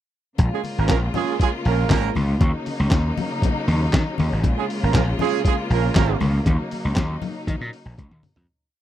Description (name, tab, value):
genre	disco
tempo	118 BPM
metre	4/4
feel	straight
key	Bb minor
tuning	A4 = 441 Hz
part	bright studio string section	sustained chords	0.4-8.5 s	Db3 to F4	-28 LUFS	left 2 dB	none
part	gritty slap bass	bass	0.4-8.5 s	Ab1 to Eb3	-21 LUFS	equal	overdrive
part	lo-fi sampler-style drum kit	drums	0.4-8.5 s	handclaps, hi-hat, kick drum, snare drum, toms	-20 LUFS	equal	overdrive
part	congas	percussion	0.4-8.4 s	none	-29 LUFS	left 6 dB	none
part	mellow horn section	stabs	0.5-6.2 s	Ab3 to Bb4	-23 LUFS	right 15 dB	none
room	little or no reverb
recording	dry, close 1970s-style studio recording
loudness	-19 LUFS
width	side -12 dB against mid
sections	0.4-8.5 groove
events	fade-out 6.5-8.5; drum fill 8.0-8.5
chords	0.4 Bbm7; 2.4 Ebm7; 4.4 Bbm7; 6.5 Ebm7